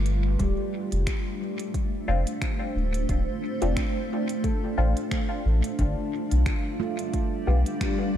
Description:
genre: ambient dub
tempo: 89 BPM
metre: 4/4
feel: swing 56% on 16ths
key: D dorian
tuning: A4 = 440 Hz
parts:
  - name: granular cloud pad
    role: sustained chords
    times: 0.0-8.2 s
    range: G3 to F5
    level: -31 LUFS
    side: equal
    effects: built-in reverb
  - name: handpan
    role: arpeggios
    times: 0.0-8.2 s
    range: G3 to A4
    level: -34 LUFS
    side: equal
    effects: dub echo
  - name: soft dub sub bass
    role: bass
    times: 0.0-8.2 s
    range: D1 to B1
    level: -23 LUFS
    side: equal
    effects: none
  - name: organic electronic drum kit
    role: drums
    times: 0.1-8.0 s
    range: finger snaps, hi-hat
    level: -39 LUFS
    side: equal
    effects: dub echo
  - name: electronic kick drum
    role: drums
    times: 0.4-8.0 s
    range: none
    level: -29 LUFS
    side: equal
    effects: overdrive
  - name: filtered dub chord stab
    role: stabs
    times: 2.1-7.6 s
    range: B3 to G4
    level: -34 LUFS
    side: left 2 dB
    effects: phaser, dub echo
room: light reverb, digital ambience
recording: none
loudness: -24 LUFS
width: side -10 dB against mid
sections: 0.4-8.2 A section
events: none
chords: 0.4 Dm7; 5.8 G7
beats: | 0.40 1.07 1.74 2.42 | 3.09 3.77 4.44 5.12 | 5.79 6.46 7.14 7.81

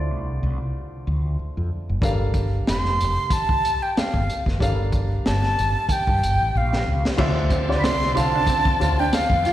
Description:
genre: R&B, neo-soul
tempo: 93 BPM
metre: 4/4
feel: swing 56% on 16ths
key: D minor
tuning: A4 = 438 Hz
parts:
  - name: warm baby grand piano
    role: accompaniment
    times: 0.0-9.5 s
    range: D3 to F5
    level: -28 LUFS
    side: left 1 dB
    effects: slapback echo
  - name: mellow fretless electric bass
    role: bass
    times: 0.0-9.4 s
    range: F1 to G2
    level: -23 LUFS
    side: equal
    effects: wide subtle chorus
  - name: crunchy breakbeat drum kit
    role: drums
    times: 2.0-9.5 s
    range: crash cymbal, hi-hat, kick drum, snare drum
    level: -24 LUFS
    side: equal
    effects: none
  - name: breathy bright concert flute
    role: melody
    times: 2.7-9.5 s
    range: F5 to C6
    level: -22 LUFS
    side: right 1 dB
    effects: slapback echo
  - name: electric guitar through a small old amp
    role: second line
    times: 7.2-9.5 s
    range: A3 to F4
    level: -29 LUFS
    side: right 4 dB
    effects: lush chorus, slapback echo
  - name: tonewheel organ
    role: sustained chords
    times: 7.2-9.5 s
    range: D3 to F4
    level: -34 LUFS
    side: right 1 dB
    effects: overdrive, chorus vibrato, fast rotary speaker
room: light reverb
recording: live gig heard through the venue's PA, recital hall reverb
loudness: -19 LUFS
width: side -13 dB against mid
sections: 0.0-7.2 A section; 7.2-9.5 B section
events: drum fill 6.5-7.2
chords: 0.0 Dm9; 2.0 Gm9; 7.2 Dm9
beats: 0.09 0.73 1.38 | 2.02 2.67 3.31 3.96 | 4.60 5.25 5.89 6.54 | 7.18 7.83 8.47 9.12

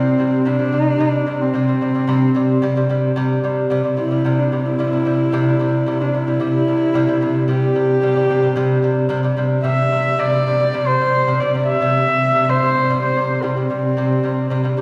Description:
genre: mongolian traditional, Mongolian folk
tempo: 111 BPM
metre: 4/4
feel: straight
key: C gong mode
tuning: A4 = 439 Hz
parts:
  - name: dark horsehead fiddle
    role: melody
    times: 0.0-14.8 s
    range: C4 to E5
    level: -21 LUFS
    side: equal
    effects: none
  - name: lute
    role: arpeggios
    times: 0.0-14.8 s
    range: C3 to G3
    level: -21 LUFS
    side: equal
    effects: none
  - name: dark horsehead fiddle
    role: drone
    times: 0.0-14.8 s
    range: C4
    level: -30 LUFS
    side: equal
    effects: none
room: wet scoring stage reverb, RT60 2.0 s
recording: heard from further back in the room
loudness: -18 LUFS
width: mono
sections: 0.0-14.8 A section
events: none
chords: 0.0 C5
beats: 0.46 1.00 1.54 | 2.08 2.62 3.16 3.70 | 4.24 4.79 5.33 5.87 | 6.41 6.95 7.49 8.03 | 8.57 9.11 9.65 10.19 | 10.73 11.27 11.81 12.35 | 12.89 13.43 13.97 14.51

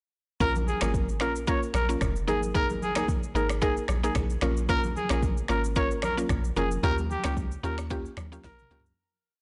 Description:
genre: afrobeats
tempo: 112 BPM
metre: 4/4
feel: swing 55% on 16ths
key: Bb dorian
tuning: A4 = 440 Hz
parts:
  - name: clear trumpet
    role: melody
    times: 0.4-8.8 s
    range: G4 to Db5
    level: -34 LUFS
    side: equal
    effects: delay
  - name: mallet-like synth pluck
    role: accompaniment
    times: 0.4-8.9 s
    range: Bb3 to Bb4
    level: -33 LUFS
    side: equal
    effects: chorus
  - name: deep log drum bass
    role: bass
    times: 0.4-8.9 s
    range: F1 to Eb2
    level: -33 LUFS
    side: equal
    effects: none
  - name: afro-pop drum kit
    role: drums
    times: 0.4-9.0 s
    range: finger snaps, kick drum, rim click, shaker, snare drum, toms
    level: -33 LUFS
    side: equal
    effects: none
  - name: congas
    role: percussion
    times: 0.4-8.8 s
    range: none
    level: -40 LUFS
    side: equal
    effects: none
room: light reverb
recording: blown-out, overdriven recording, overdrive, nothing above 10.8 kHz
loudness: -27 LUFS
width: mono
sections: 0.4-9.0 verse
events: fade-out 6.8-9.0; drum fill 8.4-9.0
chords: 0.4 Bbm; 2.3 Absus2; 4.4 Bbm; 6.8 Eb7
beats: | 0.41 0.94 1.48 2.01 | 2.55 3.08 3.62 4.16 | 4.69 5.23 5.76 6.30 | 6.83 7.37 7.91 8.44

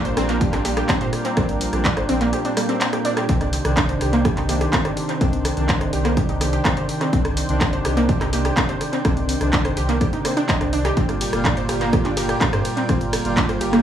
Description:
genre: melodic techno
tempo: 125 BPM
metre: 4/4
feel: straight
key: C minor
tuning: A4 = 440 Hz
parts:
  - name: lush unison pad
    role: sustained chords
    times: 0.0-13.8 s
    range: Eb3 to G5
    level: -29 LUFS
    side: right 1 dB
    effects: chorus, vintage 12-bit sampler grit, sidechain pumping
  - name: analog synth brass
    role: stabs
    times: 0.0-13.8 s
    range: Bb2 to F4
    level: -25 LUFS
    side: equal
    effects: chorus, sidechain pumping, tape echo
  - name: round analog bass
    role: bass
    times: 0.0-13.8 s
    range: G1 to Bb2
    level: -26 LUFS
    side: equal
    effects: sidechain pumping
  - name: wide unison pluck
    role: arpeggios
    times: 0.1-13.8 s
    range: G3 to Eb5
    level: -24 LUFS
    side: right 1 dB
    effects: sidechain pumping, tape echo
  - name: punchy analog drum machine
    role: drums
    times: 0.1-13.8 s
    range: handclaps, hi-hat, ride cymbal, rim click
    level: -25 LUFS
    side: right 1 dB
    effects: sidechain pumping on hats, sidechain pumping on cymbals, tape echo
  - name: electronic kick drum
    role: drums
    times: 0.4-13.5 s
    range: none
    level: -22 LUFS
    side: equal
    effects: none
room: moderate spring reverb, RT60 1.2 s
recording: echo-heavy mix, studio ambience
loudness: -18 LUFS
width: side -10 dB against mid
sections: 0.0-13.8 A section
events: none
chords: 0.0 Bb6; 3.3 Cmadd9; 11.0 Gm7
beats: 0.41 0.89 | 1.37 1.85 2.33 2.81 | 3.29 3.77 4.25 4.73 | 5.21 5.69 6.17 6.65 | 7.13 7.61 8.09 8.57 | 9.05 9.53 10.01 10.49 | 10.97 11.45 11.93 12.41 | 12.89 13.37

